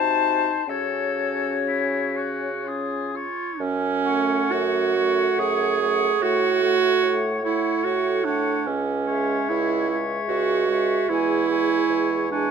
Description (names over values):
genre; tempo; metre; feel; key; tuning
classical, slow romantic movement for wind quintet; 59-75 BPM; 3/4; rubato; F# minor; A4 = 440 Hz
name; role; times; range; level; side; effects
silver concert flute; melody; 0.0-12.5 s; C#5 to A5; -28 LUFS; left 11 dB; none
clear oboe; second line; 0.0-12.5 s; E4 to C#5; -28 LUFS; left 4 dB; none
clear clarinet; accompaniment; 0.0-12.5 s; C#4 to G#4; -23 LUFS; right 8 dB; none
warm French horn; accompaniment; 0.0-12.5 s; G#3 to Eb4; -31 LUFS; left 2 dB; none
mellow bassoon; bass; 0.0-12.5 s; C#2 to C#3; -28 LUFS; right 1 dB; none
room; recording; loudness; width
moderate large studio reverb, RT60 1.3 s; close, detailed microphones, faint mains hum; -20 LUFS; side -6 dB against mid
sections
0.0-3.6 A section; 3.6-12.5 B section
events
none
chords
0.0 Cdim7; 0.7 F#m/C#; 2.7 C#; 3.6 F#m; 6.2 F#m/A; 8.7 C#m; 11.1 C#m/E